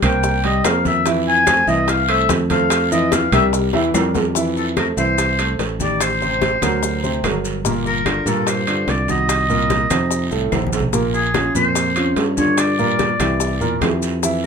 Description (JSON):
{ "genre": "Afro-Cuban jazz", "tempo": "146 BPM", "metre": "4/4", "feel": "straight", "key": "F major", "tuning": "A4 = 440 Hz", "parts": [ { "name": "warm oboe", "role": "melody", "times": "0.0-13.8 s", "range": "Ab4 to Ab5", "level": "-19 LUFS", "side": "left 2 dB", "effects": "none" }, { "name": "warm grand piano", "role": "accompaniment", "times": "0.0-14.5 s", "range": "A2 to G5", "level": "-21 LUFS", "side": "right 1 dB", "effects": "none" }, { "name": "modern bright fingered electric bass", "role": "bass", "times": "0.0-14.5 s", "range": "G1 to G2", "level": "-22 LUFS", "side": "right 1 dB", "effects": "none" }, { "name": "bongos", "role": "percussion", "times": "0.0-14.5 s", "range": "none", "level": "-26 LUFS", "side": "left 6 dB", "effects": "none" }, { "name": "claves", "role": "percussion", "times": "0.0-14.0 s", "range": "none", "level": "-30 LUFS", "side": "left 2 dB", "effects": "none" }, { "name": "congas", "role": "percussion", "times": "0.0-14.5 s", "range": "none", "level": "-26 LUFS", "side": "left 1 dB", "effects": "none" }, { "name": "guiro", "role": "percussion", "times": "0.0-14.5 s", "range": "none", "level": "-32 LUFS", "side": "right 6 dB", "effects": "none" }, { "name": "maracas", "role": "percussion", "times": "0.0-14.5 s", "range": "none", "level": "-28 LUFS", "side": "left 7 dB", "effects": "none" }, { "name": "timbales", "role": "percussion", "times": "0.0-14.0 s", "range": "none", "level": "-26 LUFS", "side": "right 5 dB", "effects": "none" } ], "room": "moderate small room reverb, RT60 0.6 s", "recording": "minimal, uncompressed stereo recording", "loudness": "-15 LUFS", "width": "side -6 dB against mid", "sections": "0.0-4.4 A section; 4.4-14.5 B section", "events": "oboe solo 0.0-4.4; drum fill 3.7-4.4, 10.5-10.9", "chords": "0.2 C5; 1.1 Fmaj7; 3.5 C7; 4.4 Fmaj7; 6.0 Am7b5; 6.8 Daug7; 7.6 Gm7; 9.3 Cm7b5; 10.1 F7; 10.9 Bbm9; 12.6 Gm7; 13.4 C9" }